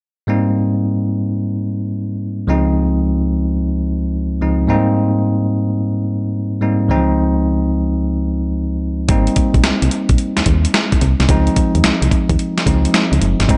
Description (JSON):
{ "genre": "R&B, new jack swing", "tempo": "109 BPM", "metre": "4/4", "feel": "swing 66% on 16ths", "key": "Ab major", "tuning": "A4 = 444 Hz", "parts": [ { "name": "bell-like tine electric piano", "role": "accompaniment", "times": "0.3-13.6 s", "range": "Db2 to Eb4", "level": "-18 LUFS", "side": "equal", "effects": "none" }, { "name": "solid FM bass", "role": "bass", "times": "9.1-13.6 s", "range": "Gb1 to Eb2", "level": "-18 LUFS", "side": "equal", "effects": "none" }, { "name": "dusty soul sampler-style drum kit", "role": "drums", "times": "9.1-13.6 s", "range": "hi-hat, kick drum, snare drum", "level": "-18 LUFS", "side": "equal", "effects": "gated reverb" } ], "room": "little or no reverb", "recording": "nothing above 10.4 kHz", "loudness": "-17 LUFS", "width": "mono", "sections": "0.3-9.1 A section; 9.1-13.6 B section", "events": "none", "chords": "0.3 Abmaj9; 2.5 Dbmaj9; 4.7 Abmaj9; 6.9 Dbmaj9; 9.1 Abmaj9 (rootless); 11.3 Dbmaj9" }